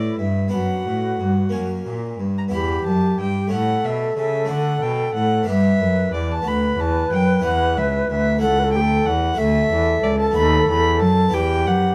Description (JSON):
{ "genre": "classical, baroque-style sonata movement with continuo", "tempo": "61 BPM (dotted quarters)", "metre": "6/8", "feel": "straight", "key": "unclear", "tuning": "A4 = 440 Hz", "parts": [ { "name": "rich violin", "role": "melody", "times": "0.0-11.9 s", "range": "D5 to B5", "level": "-26 LUFS", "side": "equal", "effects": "none" }, { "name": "wooden flute", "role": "second line", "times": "0.0-11.9 s", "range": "E4 to B4", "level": "-26 LUFS", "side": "equal", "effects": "none" }, { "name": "harpsichord", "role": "accompaniment", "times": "0.0-11.9 s", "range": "C#2 to C#5", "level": "-28 LUFS", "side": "equal", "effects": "none" }, { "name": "rich cello", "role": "bass", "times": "0.0-11.9 s", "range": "C#2 to D3", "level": "-24 LUFS", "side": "equal", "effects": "none" } ], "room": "light reverb", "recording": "dark, warm production", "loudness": "-20 LUFS", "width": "mono", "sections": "0.0-2.5 A section; 2.5-11.9 B section", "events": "none", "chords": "0.0 Em; 0.5 Bm/F#; 1.5 F#; 2.5 Em; 3.5 A7; 4.5 D; 5.5 G; 6.5 Bm/D; 7.4 Em; 8.4 A/C#; 9.4 D; 10.4 B7/D#; 11.3 Em" }